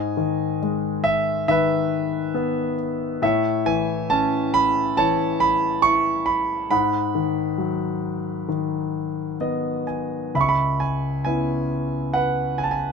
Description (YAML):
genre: classical, lyrical solo piano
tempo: 68 BPM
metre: 4/4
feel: rubato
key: C# minor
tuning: A4 = 440 Hz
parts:
  - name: warm concert grand piano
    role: solo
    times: 0.0-12.9 s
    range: C#2 to C#6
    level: -20 LUFS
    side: equal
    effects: none
room: light reverb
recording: minimal, uncompressed stereo recording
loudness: -20 LUFS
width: side -5 dB against mid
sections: 0.0-10.4 A section; 10.4-12.9 B section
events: grand piano fill 8.9-10.4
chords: 0.0 Emaj7/G#; 3.2 A; 6.7 G#m7; 10.4 C#m7